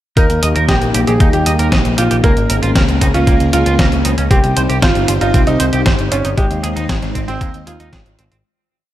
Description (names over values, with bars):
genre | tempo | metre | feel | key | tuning
italo disco | 116 BPM | 4/4 | straight | unclear | A4 = 439 Hz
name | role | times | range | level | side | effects
bright baby grand piano | melody | 0.2-7.9 s | C4 to Bb4 | -19 LUFS | right 2 dB | digital delay
string machine, full ensemble | sustained chords | 0.2-8.4 s | Ab3 to Eb5 | -20 LUFS | left 1 dB | ensemble chorus
electric guitar at the edge of break-up | arpeggios | 0.2-8.4 s | Ab3 to Eb5 | -23 LUFS | right 3 dB | low-pass filter, digital delay
picked electric bass with an envelope filter | bass | 0.2-8.4 s | G1 to Eb2 | -17 LUFS | equal | none
detuned 8-bit digital drum machine | drums | 0.2-8.4 s | hi-hat, snare drum | -19 LUFS | equal | gated reverb
electronic kick drum | drums | 0.2-8.0 s | none | -15 LUFS | equal | none
room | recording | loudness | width
light reverb | none | -11 LUFS | side -13 dB against mid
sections
0.2-8.4 verse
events
fade-out 5.7-8.4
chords
0.2 Eb; 2.2 Bbm7; 4.3 Cm; 6.4 Ab